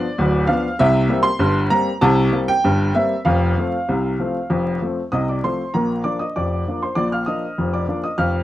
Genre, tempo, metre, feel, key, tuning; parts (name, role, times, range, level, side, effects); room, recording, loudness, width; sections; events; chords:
ragtime piano; 98 BPM; 2/4; straight; F major; A4 = 441 Hz
clear baby grand piano; solo; 0.0-8.4 s; D1 to F6; -17 LUFS; equal
light reverb; worn, warbling old tape, cassette tape, vinyl crackle, warbly pitch drift; -17 LUFS; side -14 dB against mid
0.0-5.7 A section; 5.7-8.4 B section
0.0 G7 (rootless); 0.8 C5; 3.3 F; 5.7 Bb